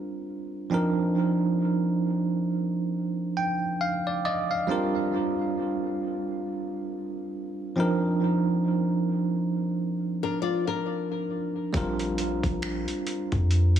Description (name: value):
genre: contemporary R&B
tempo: 68 BPM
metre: 4/4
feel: swing 58% on 16ths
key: unclear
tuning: A4 = 440 Hz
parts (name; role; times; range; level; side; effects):
- bell-like tine electric piano; accompaniment; 0.0-13.8 s; F3 to G5; -26 LUFS; right 2 dB; medium stereo tremolo, analog delay
- flamenco guitar; arpeggios; 10.2-11.7 s; D4 to D5; -28 LUFS; left 7 dB; analog delay
- warm 808-style bass; bass; 11.7-13.8 s; Bb1 to F2; -24 LUFS; equal; none
- dusty soul sampler-style drum kit; drums; 11.7-13.8 s; finger snaps, hi-hat, kick drum; -32 LUFS; equal; overdrive
room: light reverb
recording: echo-heavy mix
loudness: -25 LUFS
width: side -10 dB against mid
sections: 0.0-13.8 A section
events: tine electric piano fill 2.9-4.7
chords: 0.0 Bb69; 0.7 Cm11; 4.7 Bb69; 7.8 Cm11; 11.7 Bb69